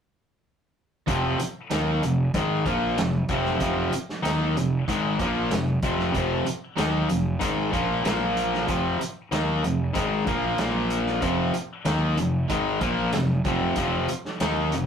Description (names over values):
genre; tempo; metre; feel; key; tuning
classic rock; 94 BPM; 4/4; straight; F minor; A4 = 440 Hz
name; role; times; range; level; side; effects
distorted electric guitar; riff; 1.1-14.9 s; F2 to Eb4; -25 LUFS; left 2 dB; overdrive
overdriven semi-hollow guitar; riff; 1.1-14.9 s; F2 to Eb4; -29 LUFS; right 4 dB; none
fuzz fingered electric bass; bass; 1.1-14.9 s; F1 to Eb2; -31 LUFS; equal; overdrive
vintage drum kit; drums; 1.1-14.9 s; hi-hat, kick drum, snare drum; -30 LUFS; right 1 dB; none
room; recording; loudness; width
wet studio reverb, RT60 0.6 s; rough rehearsal-room recording; -22 LUFS; side -7 dB against mid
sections
1.1-14.9 A section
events
none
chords
1.1 Fm; 8.0 Bb5; 8.7 Fm; 10.6 Bb5; 11.2 Fm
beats
| 1.08 1.71 2.34 2.98 | 3.61 4.24 4.88 5.51 | 6.14 6.78 7.41 8.05 | 8.68 9.32 9.95 10.59 | 11.22 11.86 12.50 13.13 | 13.77 14.40